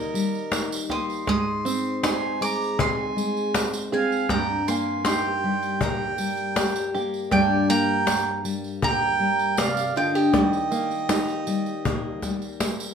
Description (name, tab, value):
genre	acoustic folk duo or small band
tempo	79 BPM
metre	4/4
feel	straight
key	unclear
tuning	A4 = 440 Hz
part	bowl-back mandolin	melody	0.0-12.6 s	Eb5 to Eb6	-28 LUFS	right 2 dB	plate reverb
part	mellow harmonica	second line	0.0-12.6 s	Bb4 to C6	-28 LUFS	right 4 dB	none
part	fingerpicked steel-string acoustic guitar	accompaniment	0.0-12.9 s	G2 to C5	-26 LUFS	left 4 dB	none
part	open-back banjo	arpeggios	0.0-12.9 s	G3 to Ab4	-29 LUFS	right 6 dB	none
part	cajon	percussion	0.1-12.8 s	none	-27 LUFS	left 2 dB	none
part	tambourine	percussion	0.2-12.9 s	none	-37 LUFS	right 6 dB	none
room	wet studio reverb, RT60 0.6 s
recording	studio ambience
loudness	-21 LUFS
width	side -7 dB against mid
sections	0.0-12.9 A section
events	none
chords	0.0 Eb; 1.3 Ab; 4.3 Eb/G; 7.3 Gm; 10.3 Eb